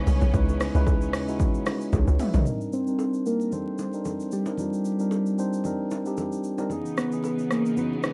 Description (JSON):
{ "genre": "amapiano", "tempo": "113 BPM", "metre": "4/4", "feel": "swing 55% on 16ths", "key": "unclear", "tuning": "A4 = 440 Hz", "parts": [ { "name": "mellow tine electric piano", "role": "accompaniment", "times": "0.0-8.1 s", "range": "Fb3 to Fb5", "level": "-31 LUFS", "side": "equal", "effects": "low-pass filter" }, { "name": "warm studio string section", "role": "sustained chords", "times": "0.0-2.4, 6.7-8.1 s", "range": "Db3 to Eb4", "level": "-39 LUFS", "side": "equal", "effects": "sidechain pumping, low-pass filter" }, { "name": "tight log drum bass", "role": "bass", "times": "0.0-2.4 s", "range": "Cb2 to Eb2", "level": "-26 LUFS", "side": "equal", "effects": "none" }, { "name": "deep house drum kit", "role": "drums", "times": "0.1-8.1 s", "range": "hi-hat, kick drum, rim click, shaker, toms", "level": "-30 LUFS", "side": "equal", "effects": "none" }, { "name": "bongos and congas", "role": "percussion", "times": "0.2-8.1 s", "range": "none", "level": "-40 LUFS", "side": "equal", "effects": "none" }, { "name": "soft struck synth lead", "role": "melody", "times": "2.7-8.1 s", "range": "G3 to C4", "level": "-30 LUFS", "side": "equal", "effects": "chorus, low-pass filter, tape echo" } ], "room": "light reverb", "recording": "vinyl crackle", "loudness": "-26 LUFS", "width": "mono", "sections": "0.0-2.5 A section; 2.5-8.1 B section", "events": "drop 0.0-2.5; drum fill 1.9-2.5; filter sweep 2.5-8.1", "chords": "0.0 Dbm9; 2.5 Cm9; 6.7 Dbm9" }